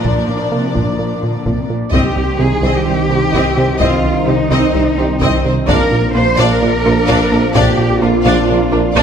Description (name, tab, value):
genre	cinematic, hybrid orchestral and electronic film score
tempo	128 BPM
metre	4/4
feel	straight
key	C minor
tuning	A4 = 441 Hz
part	warm studio violin section	melody	0.0-9.0 s	G4 to F5	-25 LUFS	left 4 dB	none
part	warm symphonic violin section	second line	0.0-9.0 s	F4 to Eb5	-23 LUFS	left 4 dB	none
part	rich symphonic viola section	accompaniment	0.0-9.0 s	F3 to D4	-22 LUFS	equal	none
part	phased analog pad	sustained chords	0.0-9.0 s	Eb3 to D5	-21 LUFS	equal	phaser, chorus
part	plucky analog bass	riff	0.0-9.0 s	C2 to Bb3	-20 LUFS	right 2 dB	none
part	warm symphonic cello section	bass	0.0-9.0 s	Bb2 to C5	-18 LUFS	right 1 dB	none
part	taiko ensemble	drums	0.0-9.0 s	none	-22 LUFS	left 1 dB	none
part	dark French horn section	sustained chords	1.9-9.0 s	Bb3 to Eb4	-22 LUFS	left 1 dB	none
part	warm trombone section	sustained chords	1.9-9.0 s	F2 to F3	-25 LUFS	right 2 dB	none
part	clear tuba	bass	1.9-9.0 s	Bb1 to C2	-22 LUFS	right 4 dB	none
part	detuned saw bass	bass	1.9-9.0 s	Bb1 to C2	-22 LUFS	equal	none
part	warm symphonic double bass section	bass	1.9-9.0 s	Bb1 to C2	-22 LUFS	right 3 dB	none
room	moderate scoring stage reverb, RT60 1.8 s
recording	none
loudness	-11 LUFS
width	side -7 dB against mid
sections	0.0-1.9 A section; 1.9-9.0 B section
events	none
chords	0.0 Bb; 1.9 Cm; 5.7 Bb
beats	| 0.05 0.52 0.99 1.46 | 1.93 2.40 2.87 3.33 | 3.80 4.27 4.74 5.21 | 5.68 6.15 6.62 7.08 | 7.55 8.02 8.49 8.96